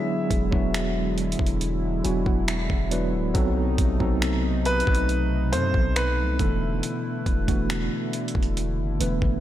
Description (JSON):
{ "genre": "contemporary R&B", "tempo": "69 BPM", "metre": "4/4", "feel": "straight", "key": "unclear", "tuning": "A4 = 441 Hz", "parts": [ { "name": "bright grand piano", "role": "melody", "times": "0.0-9.4 s", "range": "B4 to E5", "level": "-30 LUFS", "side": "equal", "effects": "tape echo" }, { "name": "tine electric piano", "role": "accompaniment", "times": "0.0-9.4 s", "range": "E3 to G#5", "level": "-27 LUFS", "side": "right 2 dB", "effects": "overdrive, fast stereo tremolo" }, { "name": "warm analog pad", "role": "sustained chords", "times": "0.0-9.4 s", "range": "B2 to E4", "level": "-31 LUFS", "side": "left 1 dB", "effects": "chorus" }, { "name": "long sustained 808-style bass", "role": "bass", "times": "0.3-9.4 s", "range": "D1 to F#2", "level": "-27 LUFS", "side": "equal", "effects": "none" }, { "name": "dusty soul sampler-style drum kit", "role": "drums", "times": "0.3-9.4 s", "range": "finger snaps, hi-hat, kick drum", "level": "-26 LUFS", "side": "equal", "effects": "overdrive" } ], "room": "light reverb, digital ambience", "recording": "none", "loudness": "-22 LUFS", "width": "side -12 dB against mid", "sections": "0.0-9.4 A section", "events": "tine electric piano fill 1.6-3.4", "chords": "0.0 E9; 3.4 B7b9; 6.4 E7sus4" }